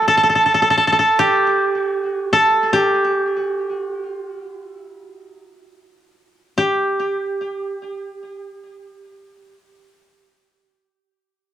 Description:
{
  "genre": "japanese traditional, Japanese chamber music",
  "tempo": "54-85 BPM",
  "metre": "4/4",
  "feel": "rubato",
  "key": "unclear",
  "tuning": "A4 = 440 Hz",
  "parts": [
    { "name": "koto", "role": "solo", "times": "0.0-10.2 s", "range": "D4 to A4", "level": "-16 LUFS", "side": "right 1 dB", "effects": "cassette tape, tape echo" }
  ],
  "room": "light reverb",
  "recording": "home recording on cassette",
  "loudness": "-15 LUFS",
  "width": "side -11 dB against mid",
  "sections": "0.0-6.6 A section; 6.6-11.0 B section",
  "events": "slowing down 0.0-6.6",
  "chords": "none",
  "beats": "0.47 1.20 1.94 | 2.73 3.57 4.47 5.47 | 6.57 7.68 8.77 9.86"
}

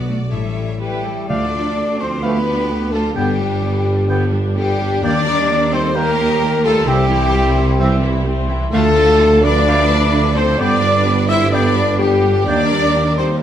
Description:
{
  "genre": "cinematic, heroic adventure film score",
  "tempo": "129 BPM",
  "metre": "4/4",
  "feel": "straight",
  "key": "D dorian",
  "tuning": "A4 = 441 Hz",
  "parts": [
    { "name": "warm symphonic violin section", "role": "melody", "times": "0.0-13.4 s", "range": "G4 to E5", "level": "-27 LUFS", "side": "left 2 dB", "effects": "none" },
    { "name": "clear symphonic violin section", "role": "second line", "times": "0.0-13.3 s", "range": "D4 to D5", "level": "-28 LUFS", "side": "left 3 dB", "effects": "none" },
    { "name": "rich symphonic viola section", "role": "accompaniment", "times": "0.0-13.4 s", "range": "D3 to B4", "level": "-25 LUFS", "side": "right 2 dB", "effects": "none" },
    { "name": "concert harp", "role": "arpeggios", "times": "0.0-13.4 s", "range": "G2 to D6", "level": "-26 LUFS", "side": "left 10 dB", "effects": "none" },
    { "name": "rich symphonic cello section", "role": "bass", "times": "0.0-13.3 s", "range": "G3 to E4", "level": "-24 LUFS", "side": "right 1 dB", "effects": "none" },
    { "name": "rich symphonic double bass section", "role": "bass", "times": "0.0-13.4 s", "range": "A1 to G2", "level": "-21 LUFS", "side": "right 2 dB", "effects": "none" },
    { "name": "timpani", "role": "percussion", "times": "0.0-2.0 s", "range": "D3", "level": "-32 LUFS", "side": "right 1 dB", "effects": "none" },
    { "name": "mellow hollow silver concert flute", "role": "second line", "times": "0.8-13.4 s", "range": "G5 to E6", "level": "-25 LUFS", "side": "left 2 dB", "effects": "none" },
    { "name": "warm French horn section", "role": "sustained chords", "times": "0.8-13.4 s", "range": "G4 to E5", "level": "-20 LUFS", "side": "left 3 dB", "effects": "none" },
    { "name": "dark trumpet section", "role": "stabs", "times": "0.8-13.4 s", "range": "G4 to E5", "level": "-23 LUFS", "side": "right 2 dB", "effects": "none" },
    { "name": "warm clarinet", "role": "second line", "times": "1.3-12.6 s", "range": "A3 to C4", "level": "-27 LUFS", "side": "left 1 dB", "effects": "none" },
    { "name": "warm oboe", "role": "second line", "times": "1.3-12.6 s", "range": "E5 to G5", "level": "-28 LUFS", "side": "right 2 dB", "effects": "none" },
    { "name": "warm trombone section", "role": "sustained chords", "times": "1.3-13.4 s", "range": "E3 to C4", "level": "-26 LUFS", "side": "right 4 dB", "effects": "none" },
    { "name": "mellow tuba", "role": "bass", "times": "1.3-13.4 s", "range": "G1 to Eb2", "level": "-22 LUFS", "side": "right 3 dB", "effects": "none" }
  ],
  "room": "moderate recital hall reverb, RT60 1.6 s",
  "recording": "none",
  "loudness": "-13 LUFS",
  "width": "side -10 dB against mid",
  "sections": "0.0-1.3 A section; 1.3-13.4 B section",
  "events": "none",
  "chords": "0.3 A7; 1.3 Dm; 3.2 G; 5.0 Eb; 6.9 C; 8.7 Dm; 10.6 G; 12.5 Eb",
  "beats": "0.32 0.81 | 1.29 1.77 2.23 2.70 | 3.17 3.63 4.10 4.56 | 5.04 5.50 5.96 6.42 | 6.88 7.34 7.81 8.27 | 8.73 9.20 9.67 10.13 | 10.60 11.06 11.53 12.00 | 12.48 12.95 13.41"
}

